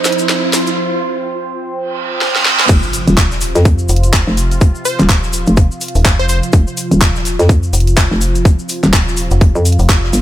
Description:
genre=bass house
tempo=125 BPM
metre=4/4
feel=swing 59% on 16ths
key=unclear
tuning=A4 = 440 Hz
part: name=sweeping resonant pad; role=sustained chords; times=0.0-10.2 s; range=C3 to C5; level=-21 LUFS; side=right 2 dB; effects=chorus, sidechain pumping
part: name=cabasa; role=percussion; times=0.0-10.2 s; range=none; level=-25 LUFS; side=left 3 dB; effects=none
part: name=riser, reverse cymbal and impact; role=sound effects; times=0.0-4.6 s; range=none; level=-18 LUFS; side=right 2 dB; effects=none
part: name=garage drum kit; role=drums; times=0.1-10.2 s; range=crash cymbal, handclaps, hi-hat, snare drum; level=-18 LUFS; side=equal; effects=overdrive, high-pass filter on snare, high-pass filter on hats, high-pass filter on cymbals
part: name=hollow knocking FM bass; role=bass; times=2.7-10.2 s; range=Eb1 to F2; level=-13 LUFS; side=equal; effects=overdrive, sidechain pumping
part: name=electronic kick drum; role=drums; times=2.7-10.0 s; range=none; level=-10 LUFS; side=equal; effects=overdrive
part: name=unplugged drum kit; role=drums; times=2.7-10.2 s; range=hi-hat, snare drum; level=-30 LUFS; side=left 2 dB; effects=none
part: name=metallic FM bass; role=bass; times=3.9-10.1 s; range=Eb1 to F1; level=-13 LUFS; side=equal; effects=tube saturation, sidechain pumping
part: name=plucky unison lead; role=melody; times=4.9-6.4 s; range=C5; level=-22 LUFS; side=left 2 dB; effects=phaser, tape echo
room=light reverb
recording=high-pass filter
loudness=-11 LUFS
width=side -13 dB against mid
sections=0.0-2.7 A section; 2.7-10.2 B section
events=build-up 0.0-2.7; drum fill 0.0-0.8, 2.2-2.7; riser 0.0-0.8; filter sweep on analog synth pad 0.0-2.7; break 0.8-2.7; reverse cymbal 1.9-2.7; drop 2.7-10.2; impact 2.7-4.6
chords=0.0 F5

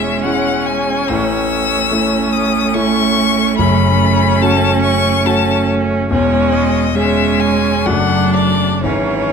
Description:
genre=classical, slow romantic movement for piano quartet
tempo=59-74 BPM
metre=3/4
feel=rubato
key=C# minor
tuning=A4 = 441 Hz
part: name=rich violin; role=melody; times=0.0-9.3 s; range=C#5 to E6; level=-18 LUFS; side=left 9 dB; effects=none
part: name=clear cello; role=second line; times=0.0-9.3 s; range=E3 to A3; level=-19 LUFS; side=right 7 dB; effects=none
part: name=rich viola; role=accompaniment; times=0.0-9.3 s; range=C#4 to D4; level=-19 LUFS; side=right 3 dB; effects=none
part: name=warm concert grand piano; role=accompaniment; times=0.0-9.3 s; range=E1 to G#4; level=-16 LUFS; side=left 2 dB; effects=none
room=moderate scoring stage reverb, RT60 1.5 s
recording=close, detailed microphones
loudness=-12 LUFS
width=side -6 dB against mid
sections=0.0-9.3 A section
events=none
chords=0.0 C#m/E; 1.1 A; 3.6 F#m; 6.1 C#m/E; 7.9 D/F#

